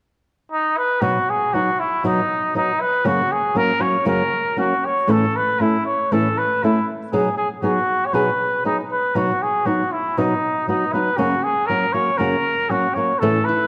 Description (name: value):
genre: mexican folk, mariachi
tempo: 118 BPM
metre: 2/4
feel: straight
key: B major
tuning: A4 = 440 Hz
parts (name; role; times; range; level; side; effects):
- warm trumpet; melody; 0.5-13.7 s; D#4 to C#5; -22 LUFS; equal; none
- flamenco guitar; accompaniment; 1.0-13.4 s; F#2 to A4; -24 LUFS; equal; none
- concert harp; arpeggios; 13.2-13.7 s; A3 to E4; -26 LUFS; equal; none
room: moderate concert hall reverb, RT60 1.8 s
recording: none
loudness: -20 LUFS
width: mono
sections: 0.0-1.0 A section; 1.0-9.2 B section; 9.2-13.7 B section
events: none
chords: 0.0 N.C.; 1.0 B; 3.1 F#; 5.1 A; 7.1 B6; 9.2 B; 11.2 F#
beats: 0.49 | 1.01 1.53 | 2.04 2.55 | 3.06 3.56 | 4.07 4.57 | 5.09 5.60 | 6.11 6.62 | 7.12 7.63 | 8.13 8.64 | 9.15 9.67 | 10.18 10.68 | 11.19 11.69 | 12.19 12.70 | 13.21